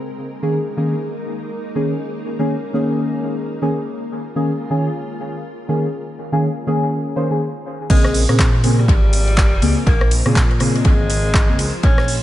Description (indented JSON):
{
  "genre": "deep house",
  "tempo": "122 BPM",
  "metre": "4/4",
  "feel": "swing 59% on 16ths",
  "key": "Bb minor",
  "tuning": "A4 = 440 Hz",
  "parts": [
    { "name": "soft string machine", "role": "sustained chords", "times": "0.0-12.2 s", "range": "F3 to C5", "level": "-30 LUFS", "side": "left 1 dB", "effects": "ensemble chorus, sidechain pumping" },
    { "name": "deep mellow chord stab", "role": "stabs", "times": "0.4-11.6 s", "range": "Db3 to C5", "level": "-20 LUFS", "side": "equal", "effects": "chorus, phaser, sidechain pumping, dub echo" },
    { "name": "clear tenor saxophone", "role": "melody", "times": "7.9-12.2 s", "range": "G3 to Db4", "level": "-25 LUFS", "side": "left 1 dB", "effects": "tape echo" },
    { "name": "smooth synth bass", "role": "bass", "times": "7.9-12.2 s", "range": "F1 to Bb2", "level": "-18 LUFS", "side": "equal", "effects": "none" },
    { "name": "damped 70s drum kit", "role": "drums", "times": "7.9-12.2 s", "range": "hi-hat, ride cymbal, snare drum", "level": "-32 LUFS", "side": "left 2 dB", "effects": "high-pass filter on cymbals, high-pass filter on hats, high-pass filter on snare, high-pass filter on room" },
    { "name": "deep house drum kit", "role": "drums", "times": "7.9-12.2 s", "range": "crash cymbal, handclaps, hi-hat, rim click", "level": "-23 LUFS", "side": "equal", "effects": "dub echo" },
    { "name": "electronic kick drum", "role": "drums", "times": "7.9-12.0 s", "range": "none", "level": "-15 LUFS", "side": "equal", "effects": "none" }
  ],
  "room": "light reverb, studio ambience",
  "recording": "echo-heavy mix, nothing above 10.9 kHz",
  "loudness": "-15 LUFS",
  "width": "side -14 dB against mid",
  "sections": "0.0-7.9 A section; 7.9-12.2 B section",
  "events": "stop 7.4-7.9; drop 7.9-12.2",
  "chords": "0.0 Eb7sus4; 7.9 Bbm9",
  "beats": "| 0.03 0.52 1.02 1.51 | 2.00 2.49 2.98 3.48 | 3.97 4.46 4.95 5.44 | 5.93 6.43 6.92 7.41 | 7.90 8.39 8.88 9.38 | 9.87 10.36 10.85 11.34 | 11.84"
}